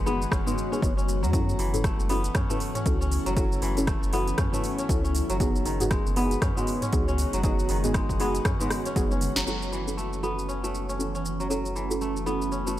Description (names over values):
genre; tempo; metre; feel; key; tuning
afro house; 118 BPM; 4/4; swing 59% on 16ths; F# dorian; A4 = 439 Hz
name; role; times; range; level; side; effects
ethereal airy pad; sustained chords; 0.0-12.8 s; D#3 to F#4; -34 LUFS; equal; ensemble chorus, built-in reverb, phaser, sidechain pumping
kora; arpeggios; 0.0-12.8 s; D#3 to C#4; -32 LUFS; left 1 dB; sidechain pumping, low-pass filter, analog delay
deep mellow chord stab; stabs; 0.0-12.8 s; B3 to C#5; -31 LUFS; equal; chorus, sidechain pumping, analog delay
warm sub bass; bass; 0.0-12.8 s; F#1 to F#2; -30 LUFS; equal; sidechain pumping
afro-pop drum kit; drums; 0.1-12.8 s; hi-hat, rim click, shaker, snare drum, toms; -33 LUFS; equal; studio reverb
electronic kick drum; drums; 0.3-9.1 s; none; -27 LUFS; equal; overdrive, studio reverb
room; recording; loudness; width
light reverb; dry, gritty hardware recording; -24 LUFS; side -13 dB against mid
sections
0.0-9.5 A section; 9.5-12.8 B section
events
filter sweep on synth stab 0.0-9.5, 9.5-12.8; drum fill 9.0-9.5; band accent 9.3; filter sweep on ambient pad 9.5-12.8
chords
0.0 B6/F#; 1.3 F#m7; 5.4 B6/F#; 9.5 F#m7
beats
0.32 0.82 | 1.33 1.84 2.35 2.86 | 3.37 3.88 4.38 4.89 | 5.40 5.91 6.42 6.93 | 7.43 7.94 8.45 8.96 | 9.47 9.98 10.49 10.99 | 11.50 12.01 12.52